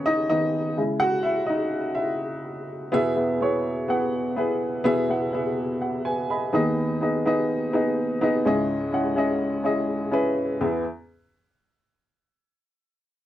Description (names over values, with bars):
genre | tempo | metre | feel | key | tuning
pop | 125 BPM | 4/4 | swing 56% on 16ths | E major | A4 = 445 Hz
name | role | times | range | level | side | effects
dark upright piano | solo | 0.0-10.8 s | C#2 to B5 | -22 LUFS | equal | none
room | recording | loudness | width
light reverb | dry, close 1970s-style studio recording | -22 LUFS | side -13 dB against mid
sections
0.0-2.9 A section; 2.9-10.6 B section; 10.6-12.5 C section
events
upright piano solo 0.0-2.9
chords
0.0 Badd9/D#; 0.8 C#madd9; 2.9 E; 6.5 G#m/D#; 8.5 C#madd9; 10.6 E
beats
0.06 0.54 | 1.02 1.50 1.98 2.46 | 2.94 3.42 3.90 4.38 | 4.86 5.34 5.82 6.30 | 6.78 7.26 7.74 8.22 | 8.70 9.18 9.65 10.13 | 10.61